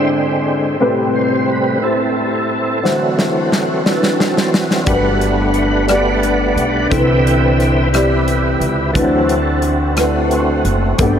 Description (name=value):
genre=slow gospel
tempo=59 BPM (dotted quarters)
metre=6/8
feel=straight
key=unclear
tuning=A4 = 440 Hz
part: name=warm concert grand piano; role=accompaniment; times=0.0-11.2 s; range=G2 to D5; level=-18 LUFS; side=left 2 dB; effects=analog chorus
part: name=overdriven tonewheel organ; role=sustained chords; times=0.0-11.2 s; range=C3 to G5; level=-16 LUFS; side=right 1 dB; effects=fast rotary speaker, chorus vibrato
part: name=modern studio drum kit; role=drums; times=2.9-11.1 s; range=hi-hat, kick drum, rim click, snare drum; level=-20 LUFS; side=equal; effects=none
part: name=upright bass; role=bass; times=4.9-11.2 s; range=F#1 to D2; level=-18 LUFS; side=equal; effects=none
room=wet huge ambient reverb, RT60 8.5 s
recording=dreamy mix soaked in reverb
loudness=-13 LUFS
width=side -8 dB against mid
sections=0.0-11.2 A section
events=tonewheel organ solo 0.0-11.2; drum fill 2.8-4.9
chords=0.0 E7alt/G#; 0.8 Am9; 2.8 D9; 4.9 Gmaj7; 6.9 Cmaj7; 9.0 D9